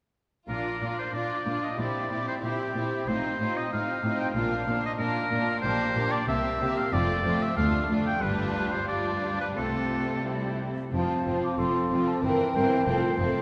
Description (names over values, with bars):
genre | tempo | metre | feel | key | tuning
quick classical-period movement for symphony orchestra | 93 BPM | 2/4 | rubato | Bb major, F major from 5.6 s | A4 = 440 Hz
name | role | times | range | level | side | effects
rich chamber violin section | melody | 0.5-13.4 s | E4 to Bb4 | -37 LUFS | equal | none
clear oboe | second line | 0.5-10.2 s | G4 to G5 | -33 LUFS | equal | none
rich chamber violin section | second line | 0.5-13.4 s | C4 to F4 | -37 LUFS | equal | none
clear studio viola section | accompaniment | 0.5-13.4 s | E3 to D4 | -35 LUFS | equal | none
rich chamber cello section | bass | 0.5-13.3 s | D2 to C3 | -36 LUFS | equal | none
rich studio double bass section | bass | 0.5-13.3 s | F1 to D2 | -38 LUFS | equal | none
clear clarinet | second line | 10.9-13.4 s | A4 to C5 | -36 LUFS | equal | none
mellow silver concert flute | second line | 10.9-13.2 s | G5 to D6 | -32 LUFS | equal | none
dark French horn section | sustained chords | 10.9-13.4 s | A3 to F4 | -33 LUFS | equal | none
room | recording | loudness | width
wet cathedral reverb, RT60 5.6 s | recorded in a church or concert hall | -28 LUFS | mono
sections
0.5-10.9 A section; 10.9-13.4 B section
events
none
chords
0.5 Bb; 1.8 C7/Bb; 3.1 F7/A; 4.4 Bb; 6.3 C7; 6.9 F; 7.6 Dm; 8.2 G5; 9.6 F/C; 10.3 C; 10.9 F; 12.2 C7/G; 12.9 F